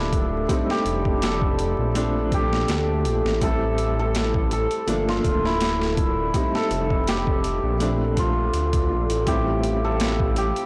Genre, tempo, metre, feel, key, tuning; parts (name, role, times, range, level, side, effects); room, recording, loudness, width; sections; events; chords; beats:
trip hop; 82 BPM; 4/4; swing 54% on 16ths; A phrygian; A4 = 440 Hz
hammered dulcimer; melody; 0.0-10.7 s; D4 to A4; -28 LUFS; equal; vintage 12-bit sampler grit, tape echo
felt-muted upright piano; accompaniment; 0.0-10.7 s; F3 to E4; -31 LUFS; equal; tremolo, vintage 12-bit sampler grit, tape echo
deep dark ambient pad; sustained chords; 0.0-10.7 s; C4 to A4; -32 LUFS; equal; chorus, built-in reverb, vintage 12-bit sampler grit
dark detuned saw bass; bass; 0.0-10.5 s; D1 to D2; -28 LUFS; equal; tube saturation
impact; sound effects; 0.0-0.5 s; barely audible
boom bap sampler-style drum kit; drums; 0.1-10.7 s; hi-hat, kick drum, snare drum; -28 LUFS; equal; overdrive
light reverb; blown-out, overdriven recording, vinyl crackle, overdrive; -22 LUFS; mono
0.0-10.7 A section
impact 0.0-0.5
0.5 F7; 2.0 Bbmaj7; 3.4 Am7; 4.9 Gm9; 6.3 F7; 7.8 Bbmaj7; 9.3 Am7
| 0.49 1.22 1.95 2.68 | 3.42 4.15 4.88 5.61 | 6.34 7.07 7.80 8.54 | 9.27 10.00